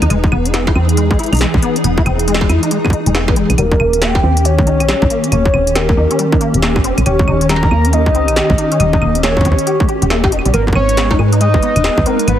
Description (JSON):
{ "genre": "IDM", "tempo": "138 BPM", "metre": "4/4", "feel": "swing 62% on 16ths", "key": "unclear", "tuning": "A4 = 439 Hz", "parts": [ { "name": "hollow soft pad", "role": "sustained chords", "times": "0.0-12.4 s", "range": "D#3 to B4", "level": "-19 LUFS", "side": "equal", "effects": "ensemble chorus" }, { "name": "deep acid bass", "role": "arpeggios", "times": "0.0-12.4 s", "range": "G3 to G4", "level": "-19 LUFS", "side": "left 3 dB", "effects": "ensemble chorus, digital delay" }, { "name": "woody FM bass", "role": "bass", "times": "0.0-12.4 s", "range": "D#1 to G#2", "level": "-15 LUFS", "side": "equal", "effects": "none" }, { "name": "industrial drum kit", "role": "drums", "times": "0.0-12.4 s", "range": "claves, hi-hat, snare drum, struck metal", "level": "-20 LUFS", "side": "equal", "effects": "none" }, { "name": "electronic kick drum", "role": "drums", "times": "0.2-12.0 s", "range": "none", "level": "-16 LUFS", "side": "equal", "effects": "distortion" }, { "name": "warbly nostalgic lead", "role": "melody", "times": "3.6-12.4 s", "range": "A#4 to A#5", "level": "-17 LUFS", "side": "equal", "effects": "chorus, ping-pong delay" } ], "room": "light reverb, digital ambience", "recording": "heavily compressed radio sound, multiband compression", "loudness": "-11 LUFS", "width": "side -11 dB against mid", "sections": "0.0-12.4 A section", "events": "none", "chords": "0.1 Emaj7; 3.6 D#7; 10.5 G#m" }